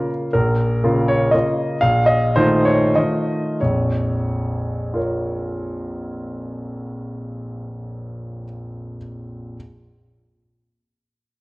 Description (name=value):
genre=classical, romantic triple-time dance for piano with dotted rhythms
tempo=85-129 BPM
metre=3/4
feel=rubato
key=Bb minor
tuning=A4 = 440 Hz
part: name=clear concert grand piano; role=solo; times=0.0-9.6 s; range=Bb1 to F5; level=-19 LUFS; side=equal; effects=none
room=moderate recital hall reverb, RT60 1.7 s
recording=worn, warbling old tape, cassette tape, warbly pitch drift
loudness=-17 LUFS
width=side -22 dB against mid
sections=0.3-3.6 A section; 3.6-7.5 B section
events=slowing down 0.0-3.6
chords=0.3 Bbm; 1.8 F7/Bb; 3.6 Bbm